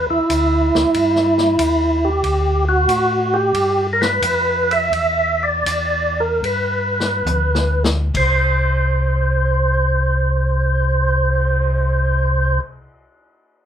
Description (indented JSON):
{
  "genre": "soul jazz organ trio",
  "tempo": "65-93 BPM",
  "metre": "4/4",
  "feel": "swing 69% on 8ths",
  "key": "unclear",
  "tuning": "A4 = 439 Hz",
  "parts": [
    { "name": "percussive tonewheel organ", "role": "melody", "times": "0.0-12.6 s", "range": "E4 to E5", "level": "-17 LUFS", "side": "right 1 dB", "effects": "slow rotary speaker, overdrive, chorus vibrato" },
    { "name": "mellow tonewheel organ", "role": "bass", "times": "0.0-12.6 s", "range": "C2 to A2", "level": "-20 LUFS", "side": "equal", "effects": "slow rotary speaker" },
    { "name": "vintage drum kit", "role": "drums", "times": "0.3-11.7 s", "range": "crash cymbal, cymbal swell, hi-hat, kick drum, ride cymbal, snare drum, toms", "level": "-27 LUFS", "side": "left 2 dB", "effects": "none" }
  ],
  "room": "moderate club reverb, RT60 0.5 s",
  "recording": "minimal, uncompressed stereo recording",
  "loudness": "-15 LUFS",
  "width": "side -9 dB against mid",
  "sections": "0.0-8.1 A section; 8.1-11.8 B section",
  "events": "slowing down 2.2-8.1; drum fill 7.3-8.1",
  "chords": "0.0 Bmadd11 (rootless); 0.9 Emmaj7; 2.2 D5; 3.5 G7; 4.9 Dsus2/E; 6.4 G; 8.1 N.C."
}